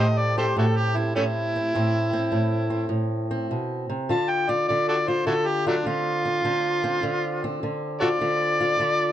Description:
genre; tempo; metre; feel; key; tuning
acoustic country blues, solo or duo; 102 BPM; 4/4; swing 66% on 8ths; unclear; A4 = 445 Hz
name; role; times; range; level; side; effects
overdriven harmonica; melody; 0.0-9.1 s; F#3 to A5; -24 LUFS; equal; plate reverb
fingerpicked old ladder-braced acoustic guitar; accompaniment; 0.0-9.1 s; A2 to G4; -24 LUFS; equal; none
room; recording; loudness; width
moderate booth ambience, RT60 0.3 s; dark, warm production; -22 LUFS; side -11 dB against mid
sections
0.0-9.1 A section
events
harmonica solo 0.0-9.1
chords
0.0 Am7; 4.1 Dm7

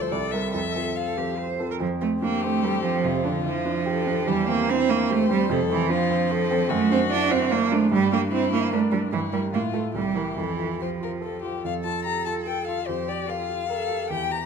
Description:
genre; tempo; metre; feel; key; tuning
quick classical-period movement for piano trio; 146 BPM; 3/4; straight; F major; A4 = 439 Hz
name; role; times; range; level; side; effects
warm violin; melody; 0.0-14.5 s; D4 to Bb5; -29 LUFS; left 11 dB; none
clear cello; second line; 0.0-14.5 s; C3 to C5; -24 LUFS; right 6 dB; none
clear baby grand piano; accompaniment; 0.0-14.5 s; C2 to C5; -28 LUFS; right 1 dB; none
room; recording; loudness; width
wet recital hall reverb, RT60 1.4 s; close, detailed microphones; -22 LUFS; side -6 dB against mid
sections
0.0-1.8 A section; 1.8-11.6 B section; 11.6-14.5 B section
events
none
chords
0.1 C7; 0.5 F; 3.0 G5/F; 4.3 C/E; 5.5 F; 6.7 D7/F#; 7.9 Gm; 9.1 Gm6; 9.5 F/A; 10.0 C7; 10.4 F; 12.9 Gm7/F

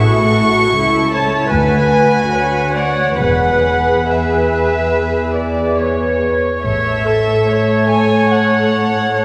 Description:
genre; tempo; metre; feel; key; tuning
classical, slow romantic movement for string orchestra; 67-80 BPM; 4/4; rubato; A major; A4 = 436 Hz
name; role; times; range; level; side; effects
warm chamber violin section; melody; 0.0-9.2 s; E5 to C#6; -21 LUFS; equal; none
dark studio violin section; second line; 0.0-9.2 s; E4 to D5; -21 LUFS; equal; none
rich studio viola section; accompaniment; 0.0-9.2 s; E4 to D5; -20 LUFS; equal; none
dark studio double bass section; bass; 0.0-7.4 s; E1 to D2; -25 LUFS; equal; none
warm chamber cello section; bass; 0.0-9.2 s; C#2 to A2; -21 LUFS; equal; none
room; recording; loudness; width
wet church reverb, RT60 2.8 s; recorded in a church or concert hall, faint mains hum; -15 LUFS; mono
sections
0.0-9.2 A section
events
none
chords
0.0 A; 1.5 Bm/D; 3.2 E; 6.7 A

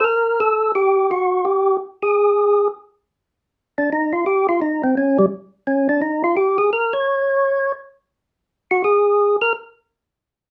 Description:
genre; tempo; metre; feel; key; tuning
jazz; 171 BPM; 4/4; swing 63% on 8ths; unclear; A4 = 436 Hz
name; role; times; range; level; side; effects
percussive tonewheel organ; solo; 0.0-9.5 s; G3 to Db5; -18 LUFS; equal; slow rotary speaker, overdrive
room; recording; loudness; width
moderate studio ambience, RT60 0.4 s; heard from further back in the room; -18 LUFS; mono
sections
0.0-2.8 A section; 2.8-10.5 B section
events
tonewheel organ solo 2.8-10.5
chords
none

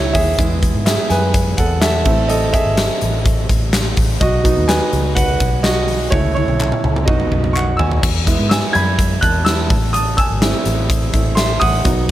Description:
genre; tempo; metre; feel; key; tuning
piano-driven pop; 126 BPM; 4/4; straight; E major; A4 = 437 Hz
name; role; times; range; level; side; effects
clear concert grand piano; accompaniment; 0.0-12.1 s; F#3 to G#6; -18 LUFS; right 2 dB; none
vintage muted fingered electric bass; bass; 0.0-12.1 s; G#1 to G#2; -19 LUFS; equal; none
huge arena drum kit; drums; 0.1-12.0 s; crash cymbal, hi-hat, kick drum, snare drum, toms; -17 LUFS; equal; none
group handclap; percussion; 0.9-7.7 s; none; -28 LUFS; left 4 dB; none
room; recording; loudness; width
light reverb, studio reverb; none; -13 LUFS; side -14 dB against mid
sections
0.0-8.0 A section; 8.0-12.1 A section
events
grand piano solo 0.0-8.0, 8.0-12.1; drum fill 6.1-8.0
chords
0.4 E; 2.1 Am; 4.2 B; 6.1 A; 7.1 B; 8.0 E; 9.7 Am

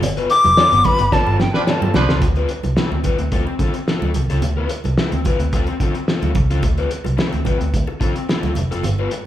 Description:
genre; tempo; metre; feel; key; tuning
funk; 109 BPM; 4/4; straight; D dorian; A4 = 440 Hz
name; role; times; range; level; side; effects
raw garage guitar; accompaniment; 0.0-9.2 s; B3 to B4; -24 LUFS; left 4 dB; overdrive
vintage muted picked electric bass; bass; 0.0-9.1 s; F1 to D3; -21 LUFS; right 1 dB; none
cloth-damped thuddy drum kit; drums; 0.0-9.2 s; hi-hat, kick drum, snare drum; -21 LUFS; equal; none
congas; percussion; 0.0-9.1 s; none; -28 LUFS; right 4 dB; none
cowbell; percussion; 0.0-1.8 s; none; -28 LUFS; left 2 dB; none
silver concert flute; melody; 0.3-2.0 s; G5 to D6; -14 LUFS; left 2 dB; none
clear horn section; second line; 1.5-2.1 s; F3 to B4; -23 LUFS; right 1 dB; none
room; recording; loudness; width
wet large studio reverb, RT60 1.1 s; band playing live in one room; -15 LUFS; side -12 dB against mid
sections
0.0-2.2 A section; 2.2-9.3 B section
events
flute solo 0.0-2.2; band accent 0.0-2.2; drum fill 1.1-2.2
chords
0.0 G9; 2.2 Dm7

